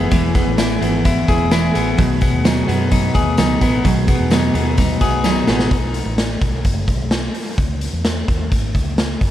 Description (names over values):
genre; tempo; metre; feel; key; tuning
jangly indie pop; 129 BPM; 4/4; straight; unclear; A4 = 445 Hz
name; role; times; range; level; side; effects
picked steel-string acoustic guitar; accompaniment; 0.0-5.7 s; B2 to G#4; -20 LUFS; right 6 dB; none
electric guitar at the edge of break-up; arpeggios; 0.0-6.3 s; B2 to G#4; -20 LUFS; left 5 dB; tape echo
vintage muted fingered electric bass; bass; 0.0-9.3 s; E1 to F#2; -22 LUFS; equal; none
raw garage drum kit; drums; 0.1-9.3 s; hi-hat, kick drum, snare drum; -18 LUFS; equal; none
tambourine; percussion; 0.1-5.6 s; none; -38 LUFS; left 6 dB; none
room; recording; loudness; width
light reverb, small room ambience; dark, warm production; -14 LUFS; side -12 dB against mid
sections
0.0-5.7 A section; 5.7-9.3 B section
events
drum fill 5.2-5.7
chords
0.0 E; 2.0 B6; 5.7 B5; 7.6 C#m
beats
| 0.12 0.58 1.05 1.52 | 1.98 2.45 2.92 3.38 | 3.85 4.32 4.78 5.25 | 5.71 6.18 6.65 7.11 | 7.58 8.05 8.51 8.98